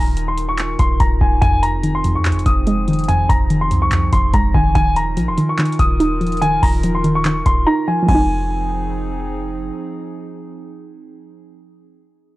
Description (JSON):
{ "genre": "hip hop, trap", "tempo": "144 BPM", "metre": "4/4", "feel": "half-time", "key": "F minor", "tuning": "A4 = 440 Hz", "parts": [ { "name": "warm baby grand piano", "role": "melody", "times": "0.0-9.3 s", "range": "Ab5 to Eb6", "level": "-20 LUFS", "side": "left 1 dB", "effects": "low-pass filter" }, { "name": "warbly tape-like pad", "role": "sustained chords", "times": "0.0-11.2 s", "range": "Eb3 to Bb4", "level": "-27 LUFS", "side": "right 2 dB", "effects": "chorus, built-in reverb" }, { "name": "clean 808-style bass", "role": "bass", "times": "0.0-9.7 s", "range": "Eb1 to F2", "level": "-21 LUFS", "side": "equal", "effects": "none" }, { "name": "booming analog drum machine", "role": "drums", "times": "0.2-8.3 s", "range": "crash cymbal, handclaps, hi-hat, kick drum", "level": "-18 LUFS", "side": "equal", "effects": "none" }, { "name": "soft round pluck", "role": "accompaniment", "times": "1.4-11.2 s", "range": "F2 to Eb4", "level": "-18 LUFS", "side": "equal", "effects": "chorus, low-pass filter" } ], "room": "little or no reverb", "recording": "dry, gritty hardware recording", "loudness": "-14 LUFS", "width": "side -18 dB against mid", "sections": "0.0-8.1 A section; 8.1-11.4 B section", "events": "drums muted 7.7-8.1", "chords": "0.0 Ebsus2; 1.4 Fm7; 4.8 Ebsus2; 8.1 Fm7" }